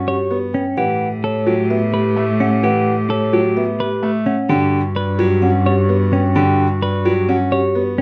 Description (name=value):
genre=classical, minimalist pattern music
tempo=129 BPM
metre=4/4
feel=straight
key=A mixolydian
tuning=A4 = 436 Hz
part: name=vibraphone with soft mallets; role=melody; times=0.0-8.0 s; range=G4 to G5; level=-25 LUFS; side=equal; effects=none
part: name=bright clarinet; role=second line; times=0.0-7.9 s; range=F#4 to G4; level=-30 LUFS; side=equal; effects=none
part: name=clear baby grand piano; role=accompaniment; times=0.0-8.0 s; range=D3 to C#4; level=-22 LUFS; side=equal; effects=none
part: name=rich cello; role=bass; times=0.0-8.0 s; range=G2 to A2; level=-22 LUFS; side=equal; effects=none
part: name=clean electric guitar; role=arpeggios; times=0.1-8.0 s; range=C#4 to C#5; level=-24 LUFS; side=equal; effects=none
room=light reverb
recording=close, detailed microphones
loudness=-17 LUFS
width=mono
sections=0.0-8.0 A section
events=none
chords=0.0 Gmaj7; 0.8 A9; 4.5 Gmaj7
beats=0.31 | 0.77 1.24 1.70 2.17 | 2.63 3.10 3.56 4.03 | 4.50 4.96 5.42 5.89 | 6.36 6.82 7.29 7.75